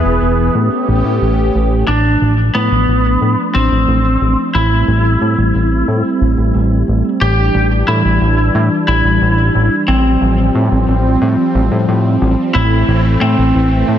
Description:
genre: synthwave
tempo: 90 BPM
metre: 4/4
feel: straight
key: A minor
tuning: A4 = 440 Hz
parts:
  - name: lightly driven lead guitar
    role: melody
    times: 0.0-14.0 s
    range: B3 to G4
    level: -16 LUFS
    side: equal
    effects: tape echo
  - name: brassy analog pad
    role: sustained chords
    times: 0.0-14.0 s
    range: E3 to B4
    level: -18 LUFS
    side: equal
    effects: chorus
  - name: fat analog bass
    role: bass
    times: 0.0-14.0 s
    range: E1 to A2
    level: -14 LUFS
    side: equal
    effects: none
room: moderate concert hall reverb, RT60 2.4 s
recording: dense, heavily limited modern master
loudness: -11 LUFS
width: side -10 dB against mid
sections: 0.0-1.9 A section; 1.9-12.5 B section; 12.5-14.0 C section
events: filter sweep on analog synth pad 1.9-12.5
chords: 0.0 E; 0.5 A7; 1.9 Dm/A; 4.5 Am7; 7.2 Em7/A; 9.9 Fsus2/A; 12.5 Am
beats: 0.55 1.21 | 1.88 2.55 3.21 3.88 | 4.55 5.21 5.88 6.55 | 7.21 7.88 8.55 9.21 | 9.88 10.55 11.21 11.88 | 12.55 13.21 13.88

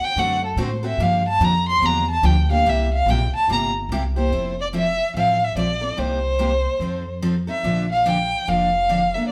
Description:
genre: acoustic string swing (jazz manouche)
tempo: 144 BPM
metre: 4/4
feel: swing 62% on 8ths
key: F major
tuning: A4 = 442 Hz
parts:
  - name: warm violin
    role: melody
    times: 0.0-9.3 s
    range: A4 to C6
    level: -23 LUFS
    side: equal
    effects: none
  - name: upright bass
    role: bass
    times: 0.0-9.1 s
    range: F1 to A2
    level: -26 LUFS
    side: equal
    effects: none
  - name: picked steel-string acoustic guitar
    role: accompaniment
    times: 0.2-9.3 s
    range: C3 to A4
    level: -27 LUFS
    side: equal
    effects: none
room: light reverb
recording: band playing live in one room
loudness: -20 LUFS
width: mono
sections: 0.0-4.3 A section; 4.3-9.3 B section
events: violin solo 0.0-4.3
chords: 0.0 D7; 1.0 Gm7; 2.7 C7; 4.3 Fmaj7; 6.0 Cm7; 6.8 F7; 7.6 Bbmaj7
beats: 0.17 0.59 | 1.00 1.41 1.83 2.24 | 2.66 3.07 3.49 3.90 | 4.32 4.73 5.15 5.57 | 5.98 6.40 6.81 7.23 | 7.65 8.06 8.48 8.89 | 9.31

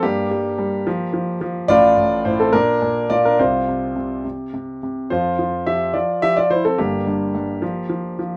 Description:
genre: classical-period piano sonatina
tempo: 72 BPM (dotted quarters)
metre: 6/8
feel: straight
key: F major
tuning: A4 = 442 Hz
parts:
  - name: warm concert grand piano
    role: solo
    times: 0.0-8.4 s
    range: G1 to E5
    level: -20 LUFS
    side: equal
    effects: none
room: moderate studio ambience, RT60 0.4 s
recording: none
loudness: -19 LUFS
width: mono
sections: 0.0-8.4 A section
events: none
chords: 0.0 Gm; 0.9 Fsus24; 1.7 F/A; 2.5 Bb; 3.4 F5/C; 4.2 N.C.; 5.1 F5; 6.8 Gm; 7.6 Fsus24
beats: | 0.02 0.86 | 1.69 2.53 | 3.38 4.24 | 5.10 5.95 | 6.78 7.62

